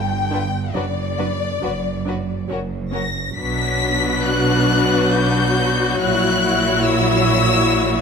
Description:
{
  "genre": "classical, slow romantic movement for string orchestra",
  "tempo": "69 BPM",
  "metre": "3/4",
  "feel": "rubato",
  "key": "B minor",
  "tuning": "A4 = 441 Hz",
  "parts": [
    { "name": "rich studio violin section", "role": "melody", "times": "0.0-8.0 s", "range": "D5 to B6", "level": "-22 LUFS", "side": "left 4 dB", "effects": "none" },
    { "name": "clear studio cello section", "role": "bass", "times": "0.0-8.0 s", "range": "F#2 to B2", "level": "-24 LUFS", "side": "right 4 dB", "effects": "none" },
    { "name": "rich studio double bass section", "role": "bass", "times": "0.0-8.0 s", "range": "F#1 to B1", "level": "-25 LUFS", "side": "right 4 dB", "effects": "none" },
    { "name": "warm studio violin section", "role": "second line", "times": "0.3-8.0 s", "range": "F4 to C#5", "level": "-24 LUFS", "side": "left 3 dB", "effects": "none" },
    { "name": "rich studio viola section", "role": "accompaniment", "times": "0.3-8.0 s", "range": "D3 to E4", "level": "-22 LUFS", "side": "left 2 dB", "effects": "none" }
  ],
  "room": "light reverb",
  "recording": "close, detailed microphones",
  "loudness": "-16 LUFS",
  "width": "side -6 dB against mid",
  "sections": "0.0-3.4 A section; 3.4-8.0 B section",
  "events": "none",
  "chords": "0.0 G5; 0.8 Bm/F# (rootless); 2.5 F#; 3.4 Bm; 6.0 F#7/A#",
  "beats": "| 0.76 1.64 2.51 | 3.38 4.25 5.12 | 6.00 6.85 7.69"
}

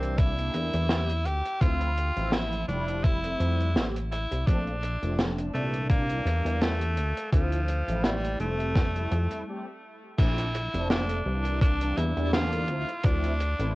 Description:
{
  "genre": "vaporwave",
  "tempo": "84 BPM",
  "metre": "4/4",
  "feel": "swing 55% on 16ths",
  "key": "F major",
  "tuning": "A4 = 438 Hz",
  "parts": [
    { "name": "raspy tenor saxophone", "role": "melody", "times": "0.0-13.8 s", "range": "F3 to G4", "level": "-32 LUFS", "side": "equal", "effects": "vintage 12-bit sampler grit, cassette tape, tape echo" },
    { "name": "mellow synth brass", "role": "accompaniment", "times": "0.0-13.8 s", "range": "Bb2 to G4", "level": "-34 LUFS", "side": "equal", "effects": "phaser, ensemble chorus, cassette tape" },
    { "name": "chorused synth bass", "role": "bass", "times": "0.0-13.8 s", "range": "F1 to F2", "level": "-29 LUFS", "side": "equal", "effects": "tube saturation" },
    { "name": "open jazz drum kit", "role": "drums", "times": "0.0-13.7 s", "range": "crash cymbal, hi-hat, snare drum", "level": "-31 LUFS", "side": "equal", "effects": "cassette tape" },
    { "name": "electronic kick drum", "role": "drums", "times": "0.2-13.2 s", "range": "none", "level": "-24 LUFS", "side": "equal", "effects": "cassette tape" }
  ],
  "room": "light reverb",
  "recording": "home recording on cassette",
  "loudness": "-24 LUFS",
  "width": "side -20 dB against mid",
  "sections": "0.0-10.2 A section; 10.2-13.8 B section",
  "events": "break 9.5-10.2",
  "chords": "0.2 C9; 1.3 Dm9; 3.0 Fmaj9; 4.5 Bbmaj9; 5.9 C9; 7.0 Dm9; 8.8 Fmaj9; 10.2 Bbmaj9; 11.6 C9; 12.7 Dm9",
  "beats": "0.19 0.90 | 1.61 2.33 3.04 3.76 | 4.47 5.19 5.90 6.61 | 7.33 8.04 8.76 9.47 | 10.19 10.90 11.61 12.33 | 13.04"
}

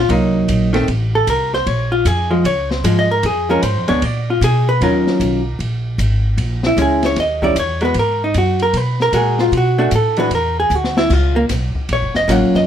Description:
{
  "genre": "jazz, small-group swing and bop",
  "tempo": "153 BPM",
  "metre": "4/4",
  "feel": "swing 64% on 8ths",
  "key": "Bb minor, Eb minor from 4.8 s",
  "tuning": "A4 = 440 Hz",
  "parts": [
    { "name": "vintage hollow-body jazz guitar", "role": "accompaniment", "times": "0.0-12.7 s", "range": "Eb3 to Gb5", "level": "-15 LUFS", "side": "equal", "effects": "none" },
    { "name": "upright bass", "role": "bass", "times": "0.0-12.7 s", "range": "F1 to Cb3", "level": "-18 LUFS", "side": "equal", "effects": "none" },
    { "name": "open jazz drum kit", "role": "drums", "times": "0.1-12.6 s", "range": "crash cymbal, hi-hat, kick drum, ride cymbal, snare drum", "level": "-26 LUFS", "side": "left 1 dB", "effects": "none" }
  ],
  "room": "moderate club reverb, RT60 0.6 s",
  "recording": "none",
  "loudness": "-14 LUFS",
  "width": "side -9 dB against mid",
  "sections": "0.0-4.8 A section; 4.8-12.7 A section",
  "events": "drum fill 10.7-11.1",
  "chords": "0.1 Cm7b5; 0.9 Am; 1.7 Bbm7; 4.0 Bb7b9; 4.8 Ebm9; 6.4 Bbm7b5; 7.2 Eb7b9; 8.0 Abm9; 9.5 Bm7; 10.3 Dadd9; 11.1 Gbmaj7",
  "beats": "| 0.10 0.50 0.89 1.28 | 1.67 2.07 2.46 2.85 | 3.24 3.64 4.03 4.42 | 4.81 5.21 5.60 5.99 | 6.38 6.78 7.17 7.56 | 7.96 8.35 8.74 9.13 | 9.53 9.92 10.31 10.71 | 11.10 11.49 11.89 12.28"
}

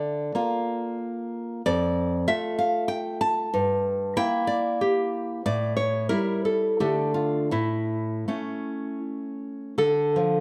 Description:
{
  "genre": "romantic piece for solo classical guitar",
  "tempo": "74-97 BPM",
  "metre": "3/4",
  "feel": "rubato",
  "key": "D minor",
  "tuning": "A4 = 441 Hz",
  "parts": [
    { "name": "nylon-string guitar", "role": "solo", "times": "0.0-10.4 s", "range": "F2 to A5", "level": "-26 LUFS", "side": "equal", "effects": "none" }
  ],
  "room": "moderate scoring stage reverb, RT60 1.7 s",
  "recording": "dark, warm production",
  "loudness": "-26 LUFS",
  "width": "mono",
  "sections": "0.0-9.8 A section",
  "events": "none",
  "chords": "0.0 Bb/D; 1.7 Dm/F; 3.5 Edim/G; 5.4 A5; 6.8 Dm; 7.5 A; 9.8 Dm",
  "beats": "0.37 1.02 | 1.66 2.28 2.90 | 3.53 4.17 4.81 | 5.45 6.11 6.80 | 7.53 8.28 9.02 | 9.79"
}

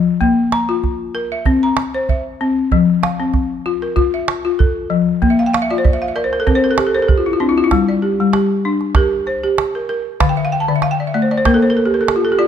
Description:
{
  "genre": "west african traditional, West African string and xylophone music",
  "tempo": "96 BPM",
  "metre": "4/4",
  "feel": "swing 55% on 16ths",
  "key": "unclear",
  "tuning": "A4 = 443 Hz",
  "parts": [
    { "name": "balafon", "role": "arpeggios", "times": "0.0-12.5 s", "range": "D3 to Bb5", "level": "-15 LUFS", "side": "left 2 dB", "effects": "none" },
    { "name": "calabash", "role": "percussion", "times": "0.2-12.2 s", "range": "none", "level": "-18 LUFS", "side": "right 4 dB", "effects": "none" }
  ],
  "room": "moderate recital hall reverb, RT60 1.6 s",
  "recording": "dark, warm production",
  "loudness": "-14 LUFS",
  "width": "side -9 dB against mid",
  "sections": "0.0-7.7 A section; 7.7-12.5 B section",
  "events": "balafon fill 5.3-7.7, 10.2-12.5",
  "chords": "0.2 Bb5; 1.5 C; 2.7 F; 5.2 Bb5; 6.5 N.C.; 7.7 Gm; 10.2 D5; 11.4 Bb5",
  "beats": "| 0.20 0.83 1.46 2.08 | 2.71 3.33 3.96 4.58 | 5.21 5.83 6.46 7.08 | 7.71 8.33 8.96 9.58 | 10.20 10.83 11.45 12.07"
}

